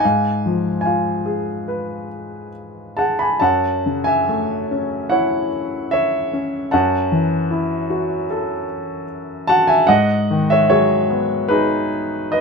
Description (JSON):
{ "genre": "classical, lyrical solo piano", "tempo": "67-77 BPM", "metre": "4/4", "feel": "rubato", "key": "F# dorian", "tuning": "A4 = 440 Hz", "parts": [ { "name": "warm grand piano", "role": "solo", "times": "0.0-12.4 s", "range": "F#2 to B5", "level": "-16 LUFS", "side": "equal", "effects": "none" } ], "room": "moderate small room reverb, RT60 0.5 s", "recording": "minimal, uncompressed stereo recording", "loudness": "-16 LUFS", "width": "side -4 dB against mid", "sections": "0.0-12.4 A section", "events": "none", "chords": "0.0 G#m6; 3.4 F#m7; 9.9 G#m7", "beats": "| 0.03 0.84 1.68 2.54 | 3.42 4.28 5.10 5.92 | 6.72 7.51 8.29 9.08 | 9.89 10.70 11.50 12.33" }